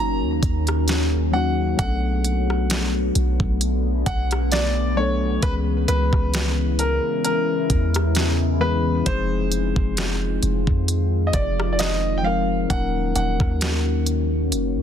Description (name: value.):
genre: contemporary R&B.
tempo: 66 BPM.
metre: 4/4.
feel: swing 54% on 16ths.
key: unclear.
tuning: A4 = 440 Hz.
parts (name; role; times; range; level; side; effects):
clear grand piano; melody; 0.0-14.0 s; Bb4 to Bb5; -26 LUFS; equal; tape echo.
mellow tine electric piano; accompaniment; 0.0-14.8 s; Fb3 to Bb4; -27 LUFS; left 6 dB; none.
deep dark ambient pad; sustained chords; 0.0-14.8 s; Db3 to Ab5; -27 LUFS; left 1 dB; chorus, built-in reverb, sidechain pumping.
warm 808-style bass; bass; 0.0-14.8 s; Eb1 to F2; -22 LUFS; equal; none.
smooth R&B drum kit; drums; 0.4-14.7 s; hi-hat, kick drum, rim click, snare drum; -24 LUFS; equal; none.
room: little or no reverb.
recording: dense, heavily limited modern master.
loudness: -19 LUFS.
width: side -9 dB against mid.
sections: 0.0-14.8 A section.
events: none.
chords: 0.0 Ebm7; 1.8 Bm7; 5.4 Dbm7; 9.1 Fm7; 12.7 Ebm7.